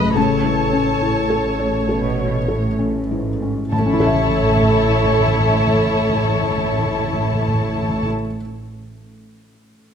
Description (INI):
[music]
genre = cinematic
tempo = 32-36 BPM (dotted quarters)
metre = 6/8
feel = rubato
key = A major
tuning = A4 = 439 Hz
[part]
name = muted symphonic violin section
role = melody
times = 0.0-8.1 s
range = A5 to B5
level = -25 LUFS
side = left 6 dB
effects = none
[part]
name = muted chamber violin section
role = second line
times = 0.0-8.1 s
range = E4 to D#5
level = -23 LUFS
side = left 3 dB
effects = none
[part]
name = felt-muted upright piano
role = accompaniment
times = 0.0-9.9 s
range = F#2 to B5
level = -22 LUFS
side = left 3 dB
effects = none
[part]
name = muted symphonic viola section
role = accompaniment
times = 0.0-8.1 s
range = A4 to B4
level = -24 LUFS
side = right 2 dB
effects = none
[part]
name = muted symphonic cello section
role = bass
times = 0.0-8.1 s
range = F#2 to B2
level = -24 LUFS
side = right 2 dB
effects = none
[part]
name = muted symphonic double bass section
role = bass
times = 0.0-8.1 s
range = F#1 to A1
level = -25 LUFS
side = right 3 dB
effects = none
[part]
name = timpani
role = percussion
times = 3.7-8.1 s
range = A2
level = -23 LUFS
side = equal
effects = none
[sound]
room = moderate scoring stage reverb, RT60 1.6 s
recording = close, detailed microphones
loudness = -16 LUFS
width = side -8 dB against mid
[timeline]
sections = 0.0-3.7 A section; 3.7-7.3 B section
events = slowing down 0.0-3.7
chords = 0.2 A